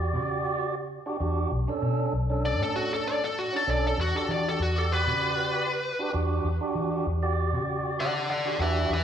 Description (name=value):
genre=straight-eighth soul blues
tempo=97 BPM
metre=4/4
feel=swing 53% on 16ths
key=unclear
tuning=A4 = 441 Hz
part: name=tonewheel organ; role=accompaniment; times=0.0-9.0 s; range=C#4 to D5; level=-30 LUFS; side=right 3 dB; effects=slow rotary speaker
part: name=vintage muted fingered electric bass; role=bass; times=0.0-9.0 s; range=B1 to E3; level=-29 LUFS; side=equal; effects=none
part: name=biting lead guitar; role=melody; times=2.5-9.0 s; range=F#4 to F#5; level=-27 LUFS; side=left 2 dB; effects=overdrive
room=wet large studio reverb, RT60 1.4 s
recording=band playing live in one room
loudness=-25 LUFS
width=side -8 dB against mid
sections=0.0-9.0 A section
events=none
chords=0.0 Em9; 1.5 Bm9; 4.0 Em9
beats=0.28 0.90 | 1.51 2.13 2.75 3.37 | 3.98 4.60 5.22 5.83 | 6.45 7.07 7.68 8.30 | 8.91